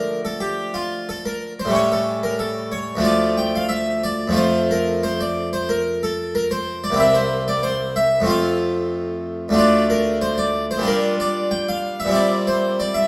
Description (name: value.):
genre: classical, baroque-style suite movement for harpsichord.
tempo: 92 BPM.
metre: 4/4.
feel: rubato.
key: unclear.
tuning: A4 = 440 Hz.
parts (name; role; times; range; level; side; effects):
harpsichord; solo; 0.0-13.1 s; C2 to G5; -21 LUFS; equal; none.
room: wet stone room reverb, RT60 1.3 s.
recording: none.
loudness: -21 LUFS.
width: mono.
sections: 0.0-13.1 A section.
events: none.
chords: 0.0 Dm; 1.7 A7; 3.0 Dm; 4.4 F; 7.0 C7; 8.3 F; 9.5 Dm; 10.8 Gm7/Bb; 12.1 C7/Bb.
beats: 0.39 1.06 | 1.71 2.37 3.03 3.69 | 4.35 5.01 5.67 6.32 | 6.96 7.61 8.26 8.90 | 9.54 10.19 10.83 11.48 | 12.12 12.76.